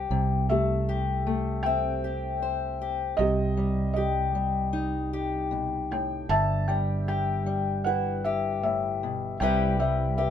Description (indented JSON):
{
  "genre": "acoustic folk-pop ballad",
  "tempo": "78 BPM",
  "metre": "4/4",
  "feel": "straight",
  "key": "unclear",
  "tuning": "A4 = 440 Hz",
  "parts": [
    { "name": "fingerpicked old ladder-braced acoustic guitar", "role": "accompaniment", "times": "0.0-10.3 s", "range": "G2 to C5", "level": "-29 LUFS", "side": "left 5 dB", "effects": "none" },
    { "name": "fretless electric bass", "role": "bass", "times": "0.0-10.3 s", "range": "G1 to C2", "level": "-29 LUFS", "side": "right 2 dB", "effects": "none" },
    { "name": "felt-muted upright piano", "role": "melody", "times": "0.5-10.3 s", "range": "G4 to A5", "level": "-29 LUFS", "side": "left 1 dB", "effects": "none" }
  ],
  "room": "little or no reverb",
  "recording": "minimal, uncompressed stereo recording",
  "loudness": "-24 LUFS",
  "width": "side -9 dB against mid",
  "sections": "0.0-10.3 A section",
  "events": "none",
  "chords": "0.1 Am7/C; 3.2 Cm; 6.3 G6; 9.4 Cmaj7",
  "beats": "| 0.11 0.88 1.65 2.42 | 3.19 3.96 4.74 5.52 | 6.30 7.08 7.86 8.63 | 9.41 10.18"
}